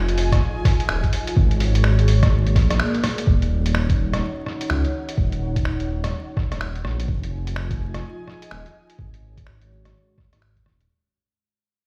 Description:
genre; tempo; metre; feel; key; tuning
future garage; 126 BPM; 4/4; swing 62% on 16ths; Eb minor; A4 = 445 Hz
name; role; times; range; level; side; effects
dark analog pad; sustained chords; 0.0-10.9 s; Ab3 to Ab5; -32 LUFS; equal; chorus, sidechain pumping
dark detuned saw bass; bass; 0.0-10.9 s; Eb1 to Db2; -23 LUFS; equal; sidechain pumping
lo-fi sampler-style drum kit; drums; 0.1-10.9 s; finger snaps, hi-hat, rim click; -30 LUFS; equal; studio reverb
electronic kick drum; drums; 0.3-10.6 s; none; -22 LUFS; equal; studio reverb
room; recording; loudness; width
little or no reverb; played on a big sound system in a bare room, large studio reverb, vinyl crackle; -21 LUFS; mono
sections
0.0-3.3 A section; 3.3-10.9 B section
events
break 2.8-3.3; band accent 2.8; fade-out 3.3-10.9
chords
0.0 Fm7; 1.4 Ab7sus4; 2.3 Bb7; 3.3 Ebm7; 7.1 Fm7; 9.0 Ab7sus4

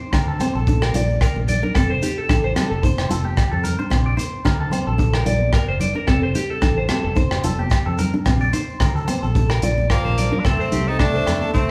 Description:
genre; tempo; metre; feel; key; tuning
highlife guitar band; 110 BPM; 4/4; swing 54% on 16ths; F mixolydian; A4 = 440 Hz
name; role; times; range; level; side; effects
nylon-string guitar; accompaniment; 0.0-11.7 s; C4 to F4; -29 LUFS; equal; none
electric guitar through a small old amp; arpeggios; 0.0-11.7 s; G4 to D5; -27 LUFS; equal; phaser
fingered electric bass; bass; 0.1-11.7 s; F1 to F2; -26 LUFS; equal; none
crunchy breakbeat drum kit; drums; 0.1-11.7 s; hi-hat, kick drum, rim click; -24 LUFS; equal; none
agogo bells; percussion; 0.1-11.4 s; none; -34 LUFS; equal; none
shekere; percussion; 0.1-11.7 s; none; -32 LUFS; equal; none
congas; percussion; 0.4-11.5 s; none; -31 LUFS; equal; none
edgy tenor saxophone; melody; 9.9-11.7 s; Bb3 to Eb4; -27 LUFS; equal; none
clear trombone; second line; 9.9-11.7 s; F3 to C4; -30 LUFS; equal; none
room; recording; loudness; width
moderate large studio reverb, RT60 1.3 s; band playing live in one room; -20 LUFS; mono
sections
0.0-10.5 A section; 10.5-11.7 B section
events
drum fill 1.1-1.8, 10.0-10.5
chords
0.0 Bbadd9; 1.8 F; 3.9 Bbadd9; 6.1 F; 8.3 Bbadd9; 10.5 F

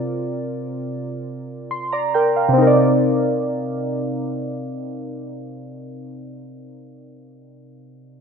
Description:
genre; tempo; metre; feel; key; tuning
R&B; 69 BPM; 4/4; straight; C minor; A4 = 440 Hz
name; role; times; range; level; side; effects
warm analog keys; accompaniment; 0.0-8.2 s; C3 to C6; -19 LUFS; equal; chorus
room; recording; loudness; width
moderate lush hall reverb, RT60 2.1 s; rough home demo mix, low-pass filter, nothing above 10.3 kHz; -18 LUFS; side -6 dB against mid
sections
0.0-2.6 A section; 2.6-6.0 B section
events
filter sweep 0.0-2.6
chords
0.0 C9sus4; 2.6 Cm7

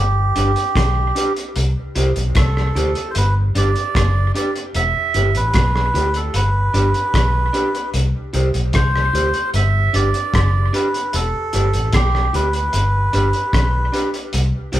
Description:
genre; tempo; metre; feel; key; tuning
roots reggae; 75 BPM; 4/4; straight; G major; A4 = 440 Hz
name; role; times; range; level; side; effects
melodica; melody; 0.0-14.1 s; G4 to E5; -21 LUFS; right 2 dB; none
vintage muted fingered electric bass; bass; 0.0-14.8 s; E1 to D2; -18 LUFS; equal; none
electric guitar through a small old amp; accompaniment; 0.4-14.8 s; D4 to C5; -24 LUFS; right 1 dB; dub echo
cloth-damped thuddy drum kit; drums; 0.4-14.8 s; hi-hat, kick drum, rim click; -21 LUFS; equal; none
room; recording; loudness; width
wet large studio reverb, RT60 0.9 s; band playing live in one room; -15 LUFS; side -13 dB against mid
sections
0.0-14.8 A section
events
none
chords
0.0 G; 1.6 C; 3.1 G; 4.7 Em; 6.3 G; 7.9 C; 9.5 G; 11.1 Em; 12.7 G

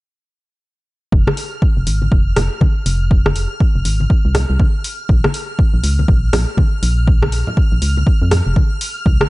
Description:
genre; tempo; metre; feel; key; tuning
deep house; 121 BPM; 4/4; swing 61% on 16ths; unclear; A4 = 442 Hz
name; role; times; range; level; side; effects
organ-like FM bass; bass; 1.1-9.2 s; F1 to F2; -16 LUFS; equal; tube saturation, sidechain pumping
electronic kick drum; drums; 1.1-9.2 s; none; -14 LUFS; equal; overdrive
string machine, violins; texture; 1.1-9.3 s; F6; -30 LUFS; equal; ensemble chorus, sidechain pumping
punchy analog drum machine; drums; 1.3-9.3 s; hi-hat, rim click; -21 LUFS; right 1 dB; overdrive
congas; percussion; 1.3-9.3 s; none; -22 LUFS; left 2 dB; sidechain pumping on perc
room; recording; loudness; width
little or no reverb; dark, warm production, nothing above 10.7 kHz; -13 LUFS; side -20 dB against mid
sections
1.1-9.3 A section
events
none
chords
1.1 N.C.; 5.1 Bb5

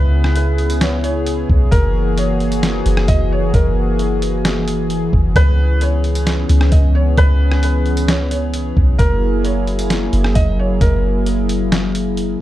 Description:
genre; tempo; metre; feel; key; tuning
hip hop, atmospheric cloud-rap; 132 BPM; 4/4; half-time; unclear; A4 = 444 Hz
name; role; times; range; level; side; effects
felt-muted upright piano; melody; 0.0-12.4 s; A#4 to D#5; -24 LUFS; right 1 dB; digital delay
warm analog pad; sustained chords; 0.0-12.4 s; C#3 to G#4; -20 LUFS; left 1 dB; chorus, sidechain pumping
soft 808-style bass; bass; 0.0-12.4 s; F#1 to C#2; -16 LUFS; equal; none
trip hop sampler-style drum kit; drums; 0.2-12.3 s; hi-hat, kick drum, rim click, snare drum; -18 LUFS; equal; none
room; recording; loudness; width
little or no reverb; dark, warm production; -13 LUFS; side -14 dB against mid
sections
0.0-12.4 A section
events
none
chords
0.0 C#m7; 1.7 F#9; 5.4 C#m7; 9.0 F#9

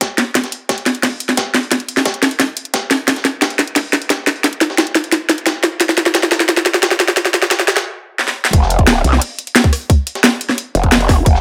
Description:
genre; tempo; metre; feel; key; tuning
dark technical drum and bass; 176 BPM; 4/4; straight; unclear; A4 = 440 Hz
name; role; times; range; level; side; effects
breakbeat sampler-style drum kit; drums; 0.0-11.4 s; hi-hat, snare drum; -26 LUFS; equal; high-pass filter on hats, high-pass filter on snare
drum and bass drum kit; drums; 0.0-11.3 s; hi-hat, rim click, snare drum; -16 LUFS; equal; overdrive
electronic kick drum; drums; 0.0-11.3 s; none; -17 LUFS; equal; overdrive, high-pass filter on kick
growl bass; bass; 8.5-11.4 s; F1 to C2; -17 LUFS; equal; chorus, tube saturation
room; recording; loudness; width
light reverb; high-pass filter; -15 LUFS; mono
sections
0.0-8.5 A section; 8.5-11.4 B section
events
build-up 0.0-8.5; drum fill 0.0-7.9, 8.2-8.5; stop 7.9-8.5; drop 8.5-11.4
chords
none

